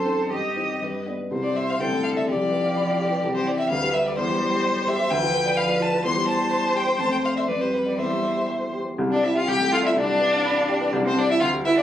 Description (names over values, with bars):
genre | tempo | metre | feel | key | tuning
quick classical-period movement for piano quartet | 118-130 BPM | 2/4 | rubato | C major | A4 = 442 Hz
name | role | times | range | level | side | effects
clear violin | melody | 0.0-11.8 s | B4 to C6 | -25 LUFS | left 3 dB | none
rich cello | second line | 0.0-11.8 s | C3 to A4 | -30 LUFS | right 4 dB | none
rich violin | second line | 0.0-11.8 s | C4 to Eb5 | -26 LUFS | left 1 dB | none
dark grand piano | accompaniment | 0.0-11.8 s | C2 to C6 | -25 LUFS | left 1 dB | none
room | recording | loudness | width
light reverb | recorded on a phone in the room, club ambience | -20 LUFS | side -11 dB against mid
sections
0.0-1.3 A section; 1.3-9.0 A section; 9.0-11.8 A section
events
none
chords
0.3 Cm/G; 0.8 G; 1.3 C; 1.8 D5/C; 2.3 G7/C; 3.2 C; 3.7 G7/D; 4.2 C/E; 5.1 Bdim/D; 6.0 C/E; 7.0 Dm7/F; 7.5 G7/F; 8.0 C/E; 9.0 C5; 9.5 D5/C; 10.0 G7/C; 10.9 C